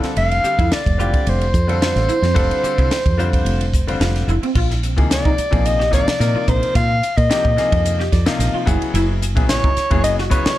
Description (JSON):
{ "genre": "electric jazz fusion", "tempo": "109 BPM", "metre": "4/4", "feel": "swing 53% on 16ths", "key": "F major", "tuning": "A4 = 438 Hz", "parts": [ { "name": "bright grand piano", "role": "accompaniment", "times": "0.0-10.5 s", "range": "C3 to A5", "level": "-24 LUFS", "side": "left 4 dB", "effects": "plate reverb" }, { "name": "semi-hollow electric guitar", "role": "stabs", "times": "0.0-10.4 s", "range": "C4 to G4", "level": "-27 LUFS", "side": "right 1 dB", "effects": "ensemble chorus, plate reverb, tape echo" }, { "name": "fingered electric bass", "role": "bass", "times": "0.0-10.5 s", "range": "Fb1 to Bb2", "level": "-19 LUFS", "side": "equal", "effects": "none" }, { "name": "crisp fusion drum kit", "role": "drums", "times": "0.0-10.6 s", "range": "crash cymbal, hi-hat, kick drum, ride cymbal, snare drum", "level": "-20 LUFS", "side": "equal", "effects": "none" }, { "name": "breathy soprano saxophone", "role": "melody", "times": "0.2-10.6 s", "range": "C5 to F5", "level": "-20 LUFS", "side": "equal", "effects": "plate reverb" } ], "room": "light reverb", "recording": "dark, warm production", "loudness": "-15 LUFS", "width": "side -14 dB against mid", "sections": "0.0-4.6 A section; 4.6-10.6 B section", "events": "grand piano fill 0.0, 7.8-8.9", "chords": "0.0 Fadd9; 4.6 Bb9sus4; 8.7 Gb9sus4", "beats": "| 0.17 0.72 1.27 1.81 | 2.36 2.91 3.46 4.01 | 4.56 5.11 5.65 6.20 | 6.75 7.30 7.85 8.39 | 8.94 9.49 10.04" }